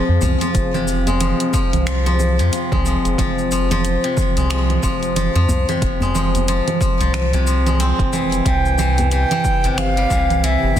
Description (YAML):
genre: organic downtempo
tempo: 91 BPM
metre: 4/4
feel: swing 59% on 16ths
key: F harmonic minor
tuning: A4 = 440 Hz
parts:
  - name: warm analog pad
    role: sustained chords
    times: 0.0-10.8 s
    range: C3 to G5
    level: -26 LUFS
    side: right 1 dB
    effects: chorus, sidechain pumping
  - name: steel-string zither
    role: arpeggios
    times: 0.0-10.8 s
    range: C3 to C4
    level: -21 LUFS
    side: left 3 dB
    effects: digital delay
  - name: round analog bass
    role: bass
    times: 0.1-10.8 s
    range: F1 to F2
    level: -19 LUFS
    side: equal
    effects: sidechain pumping
  - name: deep house drum kit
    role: drums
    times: 0.2-10.8 s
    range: congas, finger snaps, hi-hat, shaker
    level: -25 LUFS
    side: right 5 dB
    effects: soft clipping on snare
  - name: djembe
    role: percussion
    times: 0.2-10.8 s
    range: none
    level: -27 LUFS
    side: left 2 dB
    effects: none
  - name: electronic kick drum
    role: drums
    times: 0.5-10.3 s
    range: none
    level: -22 LUFS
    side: equal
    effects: none
  - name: breathy bright ney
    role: melody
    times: 8.5-10.8 s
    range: E5 to G5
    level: -20 LUFS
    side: right 1 dB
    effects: tape echo
room: moderate concert hall reverb, RT60 1.8 s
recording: dense, heavily limited modern master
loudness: -15 LUFS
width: side -10 dB against mid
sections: 0.0-10.8 A section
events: none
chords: 0.0 Fm; 8.5 C